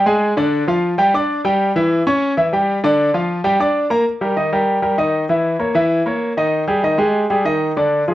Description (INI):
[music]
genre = latin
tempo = 195 BPM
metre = 4/4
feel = straight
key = unclear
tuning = A4 = 440 Hz
[part]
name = bright grand piano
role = solo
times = 0.0-8.1 s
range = D3 to D6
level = -14 LUFS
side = equal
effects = slapback echo
[sound]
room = moderate studio reverb, RT60 0.5 s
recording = worn, warbling old tape, cassette tape, warbly pitch drift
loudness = -15 LUFS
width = side -15 dB against mid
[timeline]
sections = 0.0-4.1 A section; 4.1-8.1 B section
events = none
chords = 0.4 Dm; 1.0 G5; 1.6 Em6; 2.8 Dm; 3.4 G5; 4.1 Eb; 5.3 Dbm69; 6.5 Ab5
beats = 0.07 | 0.37 0.68 0.99 1.29 | 1.60 1.91 2.21 2.52 | 2.83 3.13 3.44 3.75 | 4.06 4.37 4.67 4.98 | 5.29 5.60 5.91 6.22 | 6.53 6.83 7.14 7.45 | 7.76 8.07